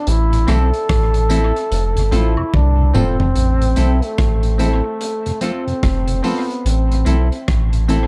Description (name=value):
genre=roots reggae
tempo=73 BPM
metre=4/4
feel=swing 62% on 16ths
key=A minor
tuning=A4 = 441 Hz
part: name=warm trombone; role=melody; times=0.0-7.5 s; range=A3 to A4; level=-25 LUFS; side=equal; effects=dub echo
part: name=soft dub sub bass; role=bass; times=0.1-8.1 s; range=E1 to C2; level=-18 LUFS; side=equal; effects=none
part: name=crunchy breakbeat drum kit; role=drums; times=0.1-8.1 s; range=hi-hat, kick drum, rim click, toms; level=-24 LUFS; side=equal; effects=none
part: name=mellow tonewheel organ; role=accompaniment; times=0.3-8.0 s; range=F2 to C4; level=-28 LUFS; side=equal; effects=slow rotary speaker
part: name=semi-hollow electric guitar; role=accompaniment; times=0.5-8.1 s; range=C4 to A4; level=-30 LUFS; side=equal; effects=dub echo
part: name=clear upright piano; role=stabs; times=0.5-8.1 s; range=C4 to A4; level=-29 LUFS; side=equal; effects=tube saturation
part: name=tambourine and woodblock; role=percussion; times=0.5-8.1 s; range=none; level=-36 LUFS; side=equal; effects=none
room=light reverb, studio reverb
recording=dark, warm production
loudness=-17 LUFS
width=mono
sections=0.0-3.4 A section; 3.4-8.1 B section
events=drum fill 2.5-3.4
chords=0.1 Am; 1.7 F; 3.4 Am; 5.0 F; 6.7 Am